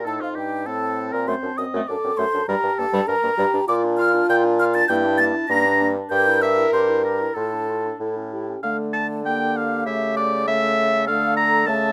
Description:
quick classical-period movement for wind quintet; 99 BPM; 2/4; straight; G minor, D minor from 3.7 s; A4 = 440 Hz
warm oboe; second line; 0.0-11.9 s; F4 to Bb5; -26 LUFS; equal
mellow French horn; accompaniment; 0.0-11.9 s; A3 to Bb4; -27 LUFS; equal
warm clarinet; accompaniment; 0.0-11.9 s; G3 to E5; -33 LUFS; equal
mellow bassoon; bass; 0.0-11.9 s; F2 to D3; -27 LUFS; equal
mellow hollow concert flute; melody; 0.1-11.9 s; D5 to Bb6; -27 LUFS; equal
light reverb; close, detailed microphones; -21 LUFS; mono
0.0-8.6 A section; 8.6-11.9 B section
0.1 Am7b5; 1.3 D7/F#; 2.5 Gm; 3.7 Bb; 4.9 Gm; 6.1 Edim/G; 7.4 Dm/A; 8.0 A; 8.6 Dm; 9.2 Gm/D; 9.9 A7/C#; 11.1 Dm

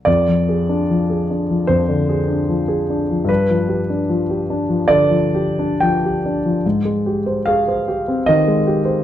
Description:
classical, romantic nocturne for solo piano; 60-79 BPM; 4/4; rubato; A4 = 440 Hz
warm concert grand piano; solo; 0.0-9.0 s; F2 to G5; -15 LUFS; equal
light reverb; close, detailed microphones; -15 LUFS; side -11 dB against mid
0.1-9.0 A section
0.1 Ddim/F; 3.3 G7; 6.6 Abmaj7

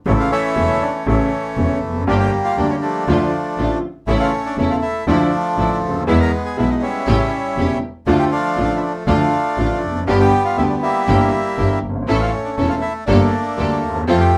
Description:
tango; 120 BPM; 4/4; rubato; D harmonic minor; A4 = 440 Hz
bandoneon; melody; 0.1-14.4 s; E3 to Bb4; -22 LUFS; equal
bright upright piano; accompaniment; 0.1-14.3 s; E1 to A4; -22 LUFS; equal
clear double bass; bass; 0.1-14.3 s; E1 to F2; -23 LUFS; equal
clear studio string section; stabs; 2.1-14.3 s; F3 to A4; -28 LUFS; equal
moderate studio ambience, RT60 0.5 s; band playing live in one room; -18 LUFS; mono
0.0-14.4 A section
0.1 A; 2.1 Gm; 3.1 Dm; 4.1 A; 5.1 Dmadd9; 6.1 E; 7.1 A7; 8.1 Dm; 10.1 G; 11.1 Edim/G; 12.1 A; 13.1 Gmadd9

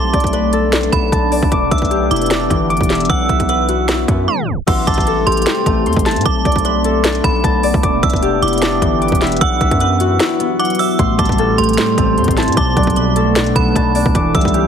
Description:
hip hop, trap; 152 BPM; 4/4; half-time; A4 = 440 Hz
metallic FM bell; second line; 0.0-14.7 s; B5 to E6; -20 LUFS; right 6 dB; chorus, digital delay
deep dark ambient pad; sustained chords; 0.0-14.7 s; E3 to G4; -21 LUFS; right 1 dB; chorus, built-in reverb
concert harp; arpeggios; 0.0-14.7 s; E3 to D6; -18 LUFS; left 5 dB; low-pass filter, digital delay
hard-hitting 808-style bass; bass; 0.0-14.7 s; E1 to A2; -20 LUFS; equal
trap drum kit; drums; 0.1-14.6 s; crash cymbal, hi-hat, kick drum, snare drum; -18 LUFS; equal
mellow electric guitar; accompaniment; 11.0-14.7 s; A2 to E4; -17 LUFS; right 2 dB; ensemble chorus, low-pass filter
light reverb, digital ambience; heavily compressed radio sound, tape stop; -12 LUFS; side -8 dB against mid
0.0-4.7 A section; 4.7-14.7 B section
break 4.3-4.7; tape stop 4.3-4.7; kick muted 10.2-11.0
0.0 Bm7; 1.5 Em7; 3.1 Bsus4; 4.7 Am7; 6.3 Bm7; 7.8 Em7; 9.4 Bsus4; 11.0 Am7; 12.6 Bm7; 14.1 Em7

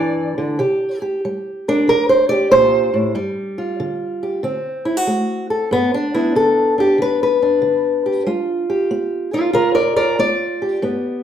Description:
acoustic country blues, solo or duo; 94 BPM; 4/4; swing 66% on 8ths; G mixolydian; A4 = 440 Hz
fingerpicked old ladder-braced acoustic guitar; solo; 0.0-11.2 s; G2 to D5; -15 LUFS; equal
wet large studio reverb, RT60 0.8 s; band playing live in one room; -15 LUFS; side -9 dB against mid
0.0-5.7 A section; 5.7-11.2 B section
steel-string acoustic guitar solo 0.0-5.7
0.0 N.C.; 0.6 C5; 3.1 G5; 4.4 D7; 5.7 G7

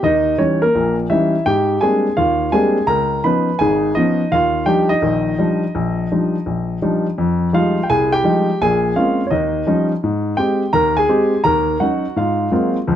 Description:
solo jazz; 168 BPM; 4/4; swing 64% on 8ths; Eb major; A4 = 439 Hz
warm grand piano; solo; 0.0-13.0 s; Ab1 to Cb6; -14 LUFS; equal
moderate club reverb, RT60 0.7 s; dark, warm production; -14 LUFS; side -10 dB against mid
0.0-7.2 A section; 7.2-13.0 B section
0.0 Eb7b9; 1.5 Abmaj9#11; 2.9 Db9; 4.3 Ebmaj9; 7.2 Fm9; 8.6 Bbm9; 9.3 Eb9; 10.0 Abmaj7; 11.4 Ebm7; 12.2 Ab13

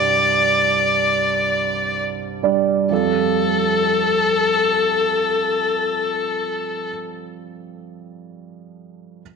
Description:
pop; free time; F major; A4 = 440 Hz
clear violin; melody; 0.0-6.9 s; A4 to D5; -18 LUFS; left 3 dB; slapback echo
dark baby grand piano; accompaniment; 0.0-9.2 s; C2 to D5; -23 LUFS; right 10 dB
downlifter; sound effects; 0.0-2.9 s; -43 LUFS; right 1 dB
moderate echo chamber reverb, RT60 2.2 s; 1960s-style stereo; -16 LUFS; side -5 dB against mid
0.0-2.9 A section; 2.9-6.7 B section
slowing down 0.0-2.9
0.0 Csus2; 2.9 Fadd9

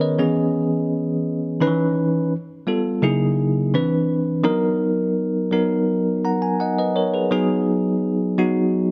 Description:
soul; 84 BPM; 4/4; straight; A4 = 440 Hz
bell-like tine electric piano; solo; 0.0-8.9 s; C#3 to A#5; -21 LUFS; equal
light reverb; -21 LUFS; mono
0.0-4.5 A section; 4.5-8.9 B section
0.2 E6; 1.6 C#m9; 2.3 G9; 3.0 F#13/C#; 3.7 Cmaj9; 4.5 Bmaj7; 7.3 G#m7

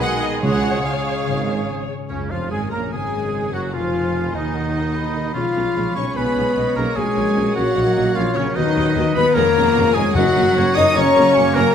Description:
classical, dramatic, fast romantic movement for symphony orchestra; 149 BPM; 4/4; straight; F# major; A4 = 440 Hz
warm studio violin section; melody; 0.0-11.7 s; C#5 to D#6; -30 LUFS; left 2 dB
clear oboe; second line; 0.0-11.7 s; C#4 to D#5; -27 LUFS; right 2 dB
mellow silver concert flute; second line; 0.0-11.7 s; B4 to B5; -29 LUFS; left 1 dB
rich symphonic violin section; second line; 0.0-11.7 s; D#4 to D#6; -32 LUFS; equal
mellow bassoon; accompaniment; 0.0-1.9 s; C#3 to D#3; -29 LUFS; right 3 dB
warm symphonic viola section; accompaniment; 0.0-11.6 s; C#3 to D#5; -29 LUFS; right 1 dB
mellow French horn section; sustained chords; 0.0-11.7 s; G#3 to D#5; -20 LUFS; left 4 dB
warm trombone section; sustained chords; 0.0-11.7 s; B2 to B3; -30 LUFS; right 5 dB
concert harp; arpeggios; 0.0-11.7 s; E#2 to B5; -27 LUFS; left 9 dB
clear trumpet; stabs; 0.0-11.7 s; C#4 to D#5; -30 LUFS; right 2 dB
mellow tuba; bass; 0.4-11.6 s; E#1 to D#2; -29 LUFS; right 4 dB
rich symphonic cello section; bass; 0.4-11.7 s; G#2 to D#4; -25 LUFS; right 3 dB
warm symphonic double bass section; bass; 0.4-11.6 s; G#1 to A#2; -29 LUFS; right 3 dB
timpani; percussion; 0.4-1.0, 10.1-10.7 s; F#2 to C#3; -25 LUFS; equal
moderate scoring stage reverb, RT60 1.8 s; -16 LUFS; side -8 dB against mid
0.0-2.1 A section; 2.1-11.7 B section
0.4 C#; 2.1 F#; 3.7 B; 5.4 C#7/B; 7.0 F#/A#; 8.6 B/D#; 9.4 C#7/E#; 10.2 F#

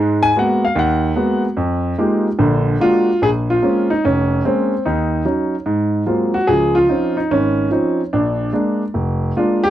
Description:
solo jazz; 146 BPM; 4/4; swing 66% on 8ths; Bb minor from 3.2 s; A4 = 442 Hz
warm concert grand piano; solo; 0.0-9.7 s; F1 to Ab5; -14 LUFS; equal
little or no reverb; dry, close 1970s-style studio recording; -15 LUFS; side -12 dB against mid
0.0-3.2 A section; 3.2-9.7 B section
grand piano solo 0.0-3.2
0.0 Abm9; 1.6 Fm11; 2.4 Bb7b13; 3.2 Bbm9; 4.8 Ebm7; 5.7 Ab13; 6.5 Dbmaj9; 8.1 Bb7

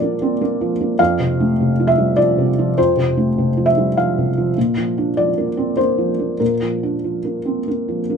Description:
neoclassical minimalist piano; 100 BPM; 3/4; uneven beats, rubato; A4 = 440 Hz
felt-muted upright piano; solo; 0.0-8.2 s; F2 to F5; -16 LUFS; equal
moderate studio reverb, RT60 0.5 s; minimal, uncompressed stereo recording; -15 LUFS; side -6 dB against mid
0.0-8.2 A section
0.0 Bb; 1.0 F; 4.6 Bb

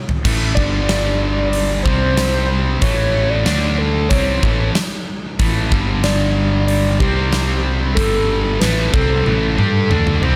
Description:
hard rock; 93 BPM; 4/4; straight; A4 = 440 Hz
huge arena drum kit; drums; 0.1-10.4 s; crash cymbal, hi-hat, kick drum, snare drum, toms; -22 LUFS; equal
tight distorted guitar; riff; 0.2-10.4 s; G2 to G4; -27 LUFS; equal; distortion
overdriven electric guitar; riff; 0.3-10.4 s; G2 to G4; -24 LUFS; equal
fuzz fingered electric bass; bass; 0.3-10.4 s; G1 to G2; -21 LUFS; equal; overdrive
pure sine lead; melody; 0.5-10.2 s; G4 to D5; -25 LUFS; equal; chorus, digital delay
light reverb, small room ambience; -17 LUFS; mono
0.0-10.4 A section
drum fill 0.0, 9.3-10.4
0.0 A5; 0.6 G5; 1.9 C5; 2.8 A; 3.5 D5; 4.1 A; 5.7 G5; 7.0 C5; 8.0 G5; 8.6 A5

